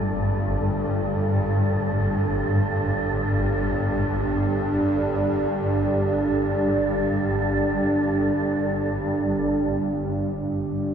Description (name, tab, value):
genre	dark ambient drone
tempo	free time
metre	none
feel	none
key	unclear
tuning	A4 = 440 Hz
part	carillon bells	arpeggios	0.0-4.3 s	none	barely audible	none	none
part	swarming drone	drone	0.0-10.9 s	G1 to G2	-24 LUFS	equal	built-in reverb
part	wind-like tuned noise texture	texture	0.0-10.9 s	G4 to A4	-30 LUFS	right 2 dB	built-in reverb
part	dark analog pad	sustained chords	0.1-10.9 s	D4 to D5	-25 LUFS	right 1 dB	chorus
room	wet lush hall reverb, RT60 2.6 s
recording	dreamy mix soaked in reverb, cassette tape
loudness	-21 LUFS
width	side -8 dB against mid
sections	0.0-9.8 A section; 9.8-10.9 A section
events	none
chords	0.0 G5